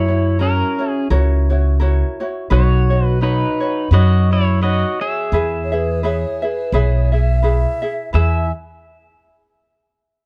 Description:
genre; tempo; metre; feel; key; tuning
Hawaiian; 85 BPM; 4/4; swing 56% on 8ths; E major; A4 = 440 Hz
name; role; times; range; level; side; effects
pedal steel guitar; melody; 0.0-8.5 s; C#4 to E5; -24 LUFS; equal; none
ukulele; accompaniment; 0.0-8.5 s; D#4 to E5; -26 LUFS; equal; none
upright bass; bass; 0.0-8.5 s; B1 to F#2; -17 LUFS; equal; none
breathy alto ocarina; second line; 5.6-8.5 s; B4 to G#5; -27 LUFS; equal; none
room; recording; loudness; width
small room ambience; dry, close 1970s-style studio recording; -17 LUFS; mono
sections
0.0-8.1 A section; 8.1-10.3 B section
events
none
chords
0.0 F#7; 2.5 Badd9; 5.3 E

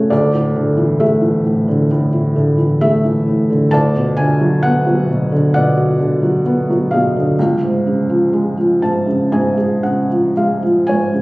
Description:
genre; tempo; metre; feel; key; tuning
classical, lyrical solo piano; 56-68 BPM; 4/4; rubato; unclear; A4 = 439 Hz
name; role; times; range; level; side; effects
felt-muted upright piano; solo; 0.0-11.2 s; C#2 to A5; -13 LUFS; equal; none
room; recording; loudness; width
moderate recital hall reverb, RT60 1.4 s; recorded on a phone in the room, club reverb; -13 LUFS; side -22 dB against mid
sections
0.0-11.2 A section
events
felt piano fill 8.3-11.2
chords
0.1 Dsus2; 3.7 Bm/D; 7.4 C#

